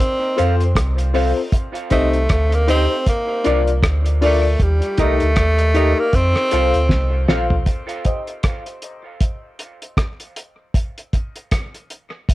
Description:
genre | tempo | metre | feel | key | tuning
dub reggae | 78 BPM | 4/4 | swing 58% on 16ths | C dorian | A4 = 440 Hz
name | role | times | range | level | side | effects
breathy tenor saxophone | melody | 0.0-7.3 s | G3 to C4 | -22 LUFS | equal | cassette tape, dub echo
cloth-damped thuddy drum kit | drums | 0.0-12.3 s | hi-hat, kick drum, rim click, snare drum, toms | -20 LUFS | equal | none
semi-hollow electric guitar | accompaniment | 0.4-8.2 s | D4 to F5 | -27 LUFS | right 6 dB | high-pass filter, low-pass filter, cassette tape, dub echo
dark concert grand piano | stabs | 0.4-11.4 s | C4 to F5 | -23 LUFS | left 5 dB | high-pass filter, low-pass filter, cassette tape, dub echo
warm sub bass | bass | 0.4-7.7 s | Bb1 to F2 | -18 LUFS | equal | none
room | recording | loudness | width
light reverb | home recording on cassette | -16 LUFS | side -17 dB against mid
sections
0.0-7.7 A section; 7.7-12.3 B section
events
filter sweep 4.6-12.3; drum fill 6.9-7.7; break 7.7-12.3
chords
0.0 F; 1.5 Cm; 3.1 Bb; 4.6 Eb; 6.1 F; 7.7 Cm; 9.2 Bb; 10.7 Eb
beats
0.76 | 1.52 2.29 3.06 3.83 | 4.60 5.37 6.13 6.90 | 7.67 8.44 9.21 9.98 | 10.74 11.51 12.28

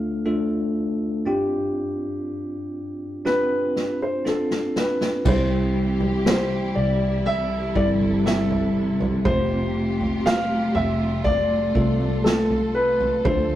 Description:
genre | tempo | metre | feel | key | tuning
pop ballad | 60 BPM | 4/4 | straight | C major | A4 = 440 Hz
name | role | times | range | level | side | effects
warm concert grand piano | melody | 0.0-13.6 s | G4 to F5 | -24 LUFS | equal | none
bell-like tine electric piano | accompaniment | 0.0-13.6 s | D2 to A4 | -24 LUFS | equal | medium stereo tremolo
unplugged drum kit | drums | 3.3-13.5 s | crash cymbal, kick drum, snare drum, toms | -26 LUFS | right 1 dB | none
warm studio string section | sustained chords | 5.2-13.6 s | C3 to A4 | -28 LUFS | equal | none
vintage muted fingered electric bass | bass | 5.3-13.6 s | F1 to D2 | -28 LUFS | right 1 dB | none
room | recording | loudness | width
moderate stone room reverb, RT60 1.2 s | rough rehearsal-room recording | -20 LUFS | side -13 dB against mid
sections
0.0-5.3 A section; 5.3-13.6 B section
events
drum fill 3.3-5.3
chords
0.0 Dm; 1.3 G7sus4; 5.3 C; 9.3 Fadd9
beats
0.25 | 1.25 2.25 3.25 4.25 | 5.25 6.25 7.25 8.25 | 9.25 10.25 11.25 12.25 | 13.25

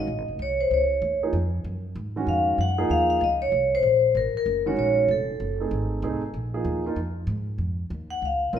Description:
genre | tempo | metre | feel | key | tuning
jazz, small-group swing and bop | 192 BPM | 4/4 | swing 61% on 8ths | Bb minor | A4 = 439 Hz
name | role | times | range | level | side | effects
vibraphone with medium hard mallets | melody | 0.0-5.7, 8.1-8.6 s | A4 to Gb5 | -22 LUFS | left 2 dB | none
dark grand piano | accompaniment | 0.0-8.6 s | Eb3 to Bb4 | -28 LUFS | right 3 dB | none
upright bass | bass | 0.0-8.6 s | F1 to Ab2 | -29 LUFS | equal | none
room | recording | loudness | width
wet large studio reverb, RT60 1.4 s | band playing live in one room | -22 LUFS | side -9 dB against mid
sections
0.0-7.6 A section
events
none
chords
0.1 Bbm7 (rootless); 2.6 Gbmaj7; 5.1 F7#9; 6.3 Bb5; 7.6 Bbm (rootless)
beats
| 0.08 0.39 0.71 1.02 | 1.33 1.65 1.96 2.27 | 2.59 2.90 3.21 3.52 | 3.84 4.15 4.46 4.78 | 5.09 5.40 5.72 6.03 | 6.34 6.66 6.97 7.28 | 7.59 7.91 8.22 8.53

